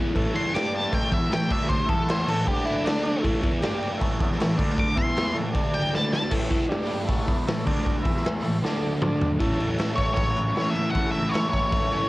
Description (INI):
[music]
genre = garage rock duo or trio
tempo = 156 BPM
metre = 4/4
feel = straight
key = A major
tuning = A4 = 443 Hz
[part]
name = crunchy overdriven guitar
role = riff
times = 0.0-12.1 s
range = A2 to G4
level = -26 LUFS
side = equal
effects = phaser, cassette tape
[part]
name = overdriven combo organ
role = sustained chords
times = 0.2-12.0 s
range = B3 to E5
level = -34 LUFS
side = equal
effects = cassette tape
[part]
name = raw garage drum kit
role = drums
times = 0.2-12.0 s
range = crash cymbal, hi-hat, kick drum, snare drum, toms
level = -26 LUFS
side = equal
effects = cassette tape
[part]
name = octave-fuzz lead guitar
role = melody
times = 0.4-6.3, 10.0-12.1 s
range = D4 to D6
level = -27 LUFS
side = equal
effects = distortion, cassette tape
[sound]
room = studio ambience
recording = home recording on cassette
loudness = -22 LUFS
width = side -19 dB against mid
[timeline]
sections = 0.0-6.3 A section; 6.3-9.4 B section; 9.4-12.1 C section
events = lead electric guitar solo 0.0-6.3; drum fill 5.9-6.3, 8.6-9.4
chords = 0.0 A; 0.5 G5; 0.9 A; 1.5 D5; 1.9 E5; 2.3 A; 2.5 D5; 3.2 A; 3.6 G5; 4.0 A; 4.6 D5; 5.0 E5; 5.3 A; 5.5 D5; 6.3 A; 6.7 G5; 7.1 A; 7.7 D5; 8.0 E5; 8.4 A; 8.6 D5; 9.4 A